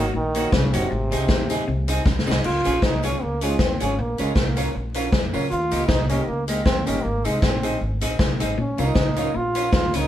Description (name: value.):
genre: ska.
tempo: 156 BPM.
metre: 4/4.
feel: swing 55% on 8ths.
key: Db major.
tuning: A4 = 443 Hz.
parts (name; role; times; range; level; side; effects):
clear trombone; melody; 0.0-10.1 s; C3 to F4; -26 LUFS; right 1 dB; none.
semi-hollow electric guitar; accompaniment; 0.0-10.1 s; Bb3 to Bb4; -29 LUFS; right 5 dB; dub echo.
warm upright piano; stabs; 0.0-10.1 s; Db4 to Eb5; -31 LUFS; left 3 dB; none.
upright bass; bass; 0.0-10.1 s; Gb1 to F2; -26 LUFS; equal; none.
clean electric guitar; riff; 0.1-2.4, 8.6-10.0 s; Gb2 to Eb3; -30 LUFS; left 3 dB; none.
swinging big-band drum kit; drums; 0.3-10.0 s; crash cymbal, hi-hat, kick drum, snare drum; -23 LUFS; left 1 dB; none.
tambourine; percussion; 0.4-10.0 s; none; -43 LUFS; left 4 dB; none.
room: moderate studio ambience, RT60 0.5 s.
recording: band playing live in one room, vinyl crackle.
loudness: -19 LUFS.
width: side -12 dB against mid.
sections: 0.0-2.4 A section; 2.4-10.1 B section.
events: drum fill 2.1-2.4.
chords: 0.0 Gb6; 0.9 Ab; 2.4 Db; 4.0 Bbm; 5.5 Eb; 7.0 Ab; 8.6 Bbm.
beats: 0.14 0.53 | 0.91 1.29 1.68 2.06 | 2.44 2.82 3.21 3.59 | 3.97 4.36 4.74 5.12 | 5.51 5.89 6.28 6.66 | 7.04 7.42 7.81 8.19 | 8.58 8.96 9.34 9.73.